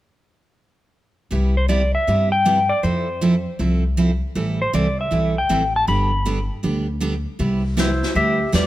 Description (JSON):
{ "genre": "country, western swing", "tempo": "158 BPM", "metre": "4/4", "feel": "swing 66% on 8ths", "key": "C major", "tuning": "A4 = 439 Hz", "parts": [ { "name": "picked steel-string acoustic guitar", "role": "accompaniment", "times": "1.3-8.7 s", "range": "C3 to A4", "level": "-22 LUFS", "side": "right 2 dB", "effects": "none" }, { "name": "upright bass", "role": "bass", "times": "1.3-8.7 s", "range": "G1 to G2", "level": "-22 LUFS", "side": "equal", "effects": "none" }, { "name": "clean lap steel guitar", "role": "melody", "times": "1.6-8.7 s", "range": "E4 to B5", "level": "-20 LUFS", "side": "left 1 dB", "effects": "none" }, { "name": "jazz brush drum kit", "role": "drums", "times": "7.4-8.7 s", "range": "brushed snare drum, hi-hat, kick drum, snare drum", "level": "-26 LUFS", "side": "left 2 dB", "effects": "none" } ], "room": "light reverb", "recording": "none", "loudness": "-17 LUFS", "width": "side -15 dB against mid", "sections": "1.3-7.4 A section; 7.4-8.7 B section", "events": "none", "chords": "1.3 Cmaj7; 2.8 Fmaj7; 4.4 Am7; 5.9 G; 7.4 Cmaj7", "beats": "| 1.31 1.70 2.08 2.46 | 2.84 3.22 3.60 3.98 | 4.36 4.74 5.12 5.50 | 5.88 6.26 6.64 7.01 | 7.39 7.77 8.15 8.53" }